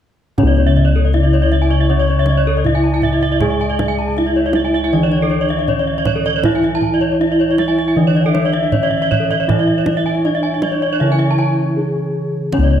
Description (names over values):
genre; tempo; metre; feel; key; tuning
Balinese gamelan; 79 BPM; 4/4; straight; C# pelog; A4 = 441 Hz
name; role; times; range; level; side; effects
gamelan-type bronze metallophone; melody; 0.4-12.8 s; C#4 to G#4; -19 LUFS; right 1 dB; none
gamelan-type bronze metallophone; accompaniment; 0.4-12.8 s; C#3 to G#3; -23 LUFS; right 2 dB; none
gamelan-type bronze metallophone; arpeggios; 0.4-12.8 s; A4 to A5; -23 LUFS; left 4 dB; none
gamelan-type bossed gongs; bass; 0.4-12.8 s; C#2 to G#4; -17 LUFS; left 1 dB; none
kendang; percussion; 0.4-12.8 s; none; -24 LUFS; right 3 dB; none
gamelan-type bronze metallophone; arpeggios; 0.5-12.7 s; A4 to A5; -22 LUFS; right 6 dB; none
bansuri; second line; 1.2-12.4 s; A4 to G#5; -26 LUFS; left 4 dB; none
room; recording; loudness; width
moderate concert hall reverb, RT60 2.3 s; dark, warm production; -13 LUFS; side -9 dB against mid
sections
0.4-12.8 A section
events
break 11.4-12.5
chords
none